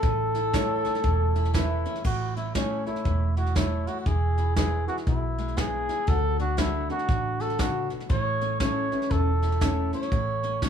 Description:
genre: honky-tonk and classic country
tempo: 119 BPM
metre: 4/4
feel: swing 62% on 8ths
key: A major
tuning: A4 = 440 Hz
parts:
  - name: trumpet with cup mute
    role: melody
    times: 0.0-10.7 s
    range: C#4 to C#5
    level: -29 LUFS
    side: left 1 dB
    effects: none
  - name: picked steel-string acoustic guitar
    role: accompaniment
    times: 0.0-10.7 s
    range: A2 to F#4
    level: -34 LUFS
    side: left 6 dB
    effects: none
  - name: vintage muted fingered electric bass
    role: bass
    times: 0.0-10.7 s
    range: E1 to D2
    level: -27 LUFS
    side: right 1 dB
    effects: none
  - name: soft brush drum kit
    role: drums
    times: 0.0-10.7 s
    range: crash cymbal, hi-hat, kick drum, snare drum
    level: -29 LUFS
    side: right 1 dB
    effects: none
  - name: clear upright piano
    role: accompaniment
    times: 0.5-10.7 s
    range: C#4 to C#5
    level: -33 LUFS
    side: right 1 dB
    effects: none
room: light reverb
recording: small room ambience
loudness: -23 LUFS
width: side -8 dB against mid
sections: 0.0-2.0 A section; 2.0-10.7 B section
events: none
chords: 0.0 A; 4.1 E; 6.1 D; 8.1 A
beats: | 0.03 0.53 1.04 1.54 | 2.04 2.55 3.05 3.56 | 4.06 4.57 5.07 5.57 | 6.08 6.58 7.09 7.59 | 8.10 8.60 9.11 9.61 | 10.12 10.62

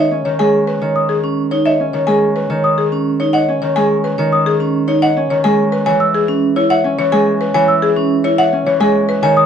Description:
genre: classical, minimalist pattern music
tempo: 107 BPM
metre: 3/4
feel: straight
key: unclear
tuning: A4 = 440 Hz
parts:
  - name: buzzing marimba with medium hard mallets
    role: melody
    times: 0.0-9.4 s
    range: G#4 to G#5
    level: -18 LUFS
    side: left 5 dB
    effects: none
  - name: Celtic harp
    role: accompaniment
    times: 0.0-9.5 s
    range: D#3 to C#4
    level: -17 LUFS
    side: equal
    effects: none
  - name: celesta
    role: arpeggios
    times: 0.0-9.5 s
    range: D#5 to E6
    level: -17 LUFS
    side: left 3 dB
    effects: none
  - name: vibraphone with medium hard mallets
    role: arpeggios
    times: 0.0-9.4 s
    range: C#4 to C#5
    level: -17 LUFS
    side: right 5 dB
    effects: none
room: light reverb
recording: dark, warm production, nothing above 10.7 kHz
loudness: -12 LUFS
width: side -8 dB against mid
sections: 0.0-9.5 A section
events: none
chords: 0.0 C#5; 5.9 E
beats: 0.25 | 0.81 1.38 1.94 | 2.50 3.06 3.62 | 4.18 4.74 5.30 | 5.86 6.42 6.98 | 7.54 8.11 8.67 | 9.23

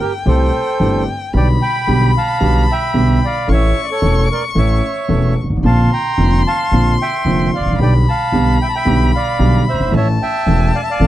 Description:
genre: tango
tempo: 112 BPM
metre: 4/4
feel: rubato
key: unclear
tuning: A4 = 440 Hz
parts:
  - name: bandoneon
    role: melody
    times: 0.0-11.1 s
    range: G4 to B5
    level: -19 LUFS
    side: right 2 dB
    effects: none
  - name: warm violin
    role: second line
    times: 0.0-11.1 s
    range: G5 to C#6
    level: -22 LUFS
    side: left 5 dB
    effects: none
  - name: warm concert grand piano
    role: accompaniment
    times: 0.3-11.1 s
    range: E1 to A4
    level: -18 LUFS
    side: right 1 dB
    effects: none
  - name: upright bass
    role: bass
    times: 0.3-11.1 s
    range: E1 to C2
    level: -16 LUFS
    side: equal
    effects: none
room: studio reverb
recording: dry, close 1970s-style studio recording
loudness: -12 LUFS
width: side -14 dB against mid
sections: 0.0-11.1 A section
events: none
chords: 0.0 C6; 1.3 G/B; 3.5 A; 5.6 Bbadd9; 7.8 G/B; 9.9 A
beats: 0.27 0.80 | 1.34 1.87 2.41 2.95 | 3.49 4.03 4.57 5.11 | 5.65 6.19 6.72 7.26 | 7.80 8.33 8.87 9.40 | 9.94 10.47 11.01

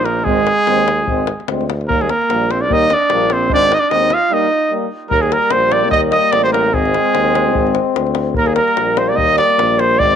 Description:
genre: balkan folk, Balkan brass band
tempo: 148 BPM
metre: 2/4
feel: swing 55% on 16ths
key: Eb major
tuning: A4 = 438 Hz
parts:
  - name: clear trumpet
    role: melody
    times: 0.0-10.2 s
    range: Ab4 to F5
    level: -15 LUFS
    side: equal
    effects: none
  - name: clear clarinet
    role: second line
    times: 0.0-10.2 s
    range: Ab3 to Eb5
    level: -22 LUFS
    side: right 13 dB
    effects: tape echo
  - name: warm tuba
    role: bass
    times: 0.0-10.2 s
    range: Ab1 to Eb2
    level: -21 LUFS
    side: equal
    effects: none
  - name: davul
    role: percussion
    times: 0.1-10.1 s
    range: none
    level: -23 LUFS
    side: left 5 dB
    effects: none
  - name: clear euphonium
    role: accompaniment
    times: 0.3-10.2 s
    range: Bb3 to C4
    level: -22 LUFS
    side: left 12 dB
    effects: none
  - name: clear trombone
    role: accompaniment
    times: 0.3-10.2 s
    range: G3 to Ab3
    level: -24 LUFS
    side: right 15 dB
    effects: none
room: moderate spring reverb, RT60 1.4 s, small room ambience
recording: 1960s-style stereo with parts hard left and right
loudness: -12 LUFS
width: side -8 dB against mid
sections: 0.0-5.1 A section; 5.1-10.2 A section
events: break 4.3-5.1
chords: 0.3 Ab; 1.9 Eb; 3.5 Ab; 4.3 Eb; 6.7 Ab; 8.4 Eb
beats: | 0.26 0.67 | 1.07 1.48 | 1.89 2.29 | 2.70 3.10 | 3.51 3.92 | 4.32 4.73 | 5.13 5.54 | 5.94 6.34 | 6.75 7.15 | 7.56 7.96 | 8.36 8.77 | 9.17 9.57 | 9.98

